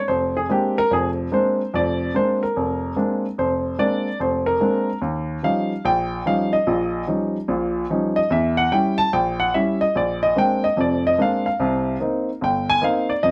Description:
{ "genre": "solo jazz", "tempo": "146 BPM", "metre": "4/4", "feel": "swing 66% on 8ths", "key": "Bb mixolydian", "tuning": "A4 = 440 Hz", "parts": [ { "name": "warm baby grand piano", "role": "solo", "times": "0.0-13.3 s", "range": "F1 to A5", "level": "-21 LUFS", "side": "equal", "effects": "none" } ], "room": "moderate studio reverb, RT60 0.6 s", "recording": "band playing live in one room", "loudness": "-21 LUFS", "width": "mono", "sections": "0.0-13.3 A section", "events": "grand piano solo 0.0-13.3", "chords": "0.0 Bb9; 5.0 Eb9; 8.3 Edim7; 9.9 Bb9; 11.6 Cm7" }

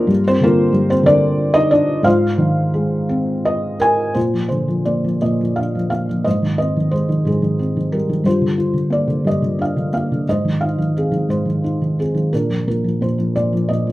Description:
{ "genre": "classical, lyrical solo piano", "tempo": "56-63 BPM (dotted quarters)", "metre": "6/8", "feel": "rubato", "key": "unclear", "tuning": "A4 = 440 Hz", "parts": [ { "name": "felt-muted upright piano", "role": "solo", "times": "0.0-13.9 s", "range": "F2 to Ab5", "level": "-15 LUFS", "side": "equal", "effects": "none" } ], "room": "light reverb", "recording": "none", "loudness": "-15 LUFS", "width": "side -17 dB against mid", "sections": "0.0-4.2 A section; 4.2-13.9 B section", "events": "felt piano fill 3.1-4.2", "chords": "0.1 Gm7; 2.1 Fm7/Ab; 4.2 Bb; 6.3 Abmaj7; 8.3 Gm7; 10.3 Ab; 12.3 Bb" }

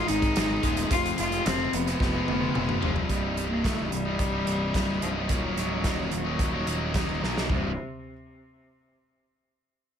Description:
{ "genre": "quiet-loud alternative rock", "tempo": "109 BPM", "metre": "4/4", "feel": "straight", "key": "unclear", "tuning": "A4 = 440 Hz", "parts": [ { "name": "rich cello", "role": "melody", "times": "0.0-7.8 s", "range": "C3 to F4", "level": "-30 LUFS", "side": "left 1 dB", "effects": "none" }, { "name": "biting overdriven guitar", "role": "riff", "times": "0.0-7.7 s", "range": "C2 to Ab4", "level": "-34 LUFS", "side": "right 15 dB", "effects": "none" }, { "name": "crunchy overdriven guitar", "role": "riff", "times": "0.0-3.1 s", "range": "F2 to Ab3", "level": "-34 LUFS", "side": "equal", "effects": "none" }, { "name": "distorted electric guitar", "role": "riff", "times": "0.0-7.7 s", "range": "C2 to Ab4", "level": "-32 LUFS", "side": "left 14 dB", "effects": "distortion" }, { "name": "fuzz picked electric bass", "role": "bass", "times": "0.1-7.7 s", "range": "C1 to B1", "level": "-31 LUFS", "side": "equal", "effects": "overdrive" }, { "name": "loose indie drum kit", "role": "drums", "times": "0.1-7.6 s", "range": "hi-hat, kick drum, snare drum, toms", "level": "-30 LUFS", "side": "equal", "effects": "none" } ], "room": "light reverb", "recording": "none", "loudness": "-24 LUFS", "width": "side -8 dB against mid", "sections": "0.0-3.1 A section; 3.1-7.5 B section; 7.5-9.7 C section", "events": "drum fill 2.0-3.1, 7.2", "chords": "0.0 Abm; 0.9 Fm; 3.1 Cm; 5.3 Ebm; 7.5 C5" }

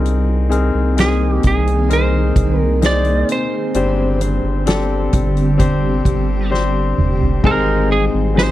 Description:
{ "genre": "pop ballad", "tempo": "65 BPM", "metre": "4/4", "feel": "straight", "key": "unclear", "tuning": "A4 = 435 Hz", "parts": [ { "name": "clear concert grand piano", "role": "accompaniment", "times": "0.0-8.5 s", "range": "G2 to Eb5", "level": "-20 LUFS", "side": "left 5 dB", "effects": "none" }, { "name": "granular cloud pad", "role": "sustained chords", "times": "0.0-8.5 s", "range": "C3 to Ab4", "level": "-23 LUFS", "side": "right 2 dB", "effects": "built-in reverb" }, { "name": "saturated sub bass", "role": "bass", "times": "0.0-8.5 s", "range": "F1 to C2", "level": "-18 LUFS", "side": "equal", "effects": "none" }, { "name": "soft-mallet drum kit", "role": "drums", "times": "0.1-8.5 s", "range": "crash cymbal, hi-hat, kick drum, ride cymbal, snare drum, toms", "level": "-18 LUFS", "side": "equal", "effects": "none" }, { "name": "lightly driven lead guitar", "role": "melody", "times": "1.0-8.5 s", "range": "Ab4 to D5", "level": "-21 LUFS", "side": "right 4 dB", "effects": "none" } ], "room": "small room ambience", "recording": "dry, close 1970s-style studio recording", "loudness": "-14 LUFS", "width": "side -14 dB against mid", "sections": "0.0-7.4 A section; 7.4-8.5 B section", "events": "drum fill 6.5-7.4", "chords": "0.0 Abadd9/C; 3.7 Gsus4; 7.4 Ab" }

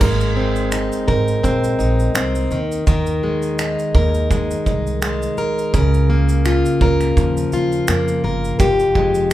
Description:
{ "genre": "acoustic pop", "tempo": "84 BPM", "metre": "4/4", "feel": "swing 55% on 16ths", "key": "Ab major", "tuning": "A4 = 441 Hz", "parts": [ { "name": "picked plugged-in steel-string acoustic guitar", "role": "accompaniment", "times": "0.0-9.3 s", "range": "F2 to Bb4", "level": "-18 LUFS", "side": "left 1 dB", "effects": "none" }, { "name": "upright bass", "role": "bass", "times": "0.0-9.3 s", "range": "F1 to F2", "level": "-20 LUFS", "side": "right 1 dB", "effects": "none" }, { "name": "loose indie drum kit", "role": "drums", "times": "0.0-9.3 s", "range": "crash cymbal, finger snaps, kick drum, shaker", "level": "-21 LUFS", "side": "right 1 dB", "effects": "none" } ], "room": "moderate large studio reverb, RT60 0.9 s", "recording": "band playing live in one room", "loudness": "-15 LUFS", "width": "side -14 dB against mid", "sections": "0.0-9.3 A section", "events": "none", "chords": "0.0 Abadd9; 2.5 Ebsus4; 5.7 Bbm/Db; 8.6 Fmadd9" }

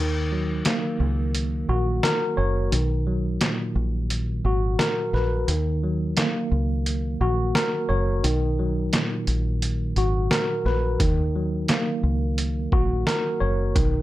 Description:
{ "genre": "hip hop, boom-bap hip-hop", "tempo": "87 BPM", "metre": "4/4", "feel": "swing 58% on 16ths", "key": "Eb minor", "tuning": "A4 = 438 Hz", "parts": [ { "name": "tine electric piano", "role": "accompaniment", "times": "0.0-14.0 s", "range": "A#2 to Db5", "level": "-25 LUFS", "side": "equal", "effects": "overdrive, medium stereo tremolo, cassette tape, high-pass filter, low-pass filter" }, { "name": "deep dub fingered electric bass", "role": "bass", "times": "0.0-14.0 s", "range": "Gb1 to Eb2", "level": "-24 LUFS", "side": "equal", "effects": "none" }, { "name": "trip hop sampler-style drum kit", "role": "drums", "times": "0.7-13.9 s", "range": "handclaps, hi-hat, kick drum, snare drum", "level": "-25 LUFS", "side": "equal", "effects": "overdrive" } ], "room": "light reverb", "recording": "none", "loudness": "-21 LUFS", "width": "side -15 dB against mid", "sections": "0.0-14.0 A section", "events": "break 0.0-11.0", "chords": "0.0 Ebm7; 2.7 Bmaj7; 5.5 Ebm7; 8.2 Bmaj7; 11.0 Ebm7" }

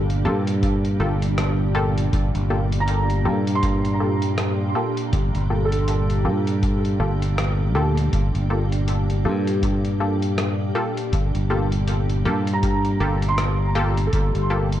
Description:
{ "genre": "ambient dub", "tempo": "80 BPM", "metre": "4/4", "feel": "swing 59% on 16ths", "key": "G minor", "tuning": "A4 = 440 Hz", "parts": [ { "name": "soft additive organ-like pad", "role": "sustained chords", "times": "0.0-14.8 s", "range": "Bb2 to F5", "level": "-27 LUFS", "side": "equal", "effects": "ensemble chorus, built-in reverb" }, { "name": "felt-muted upright piano", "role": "arpeggios", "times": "0.0-14.8 s", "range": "A4 to C6", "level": "-29 LUFS", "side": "right 3 dB", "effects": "dub echo" }, { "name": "fingered electric bass", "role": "bass", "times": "0.0-14.8 s", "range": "G1 to G2", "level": "-21 LUFS", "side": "equal", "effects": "tube saturation" }, { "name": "lo-fi sampler-style drum kit", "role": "drums", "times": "0.1-14.8 s", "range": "hi-hat, rim click", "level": "-33 LUFS", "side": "left 1 dB", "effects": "none" }, { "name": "filtered dub chord stab", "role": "stabs", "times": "0.2-14.7 s", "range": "Bb3 to A4", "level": "-28 LUFS", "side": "left 1 dB", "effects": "chorus, cassette tape, dub echo" }, { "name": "electronic kick drum", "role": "drums", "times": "0.6-14.3 s", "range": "none", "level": "-24 LUFS", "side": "equal", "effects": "none" } ], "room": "light reverb, digital ambience", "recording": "none", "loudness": "-19 LUFS", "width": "side -12 dB against mid", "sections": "0.0-14.8 A section", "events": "none", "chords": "0.0 Gm9" }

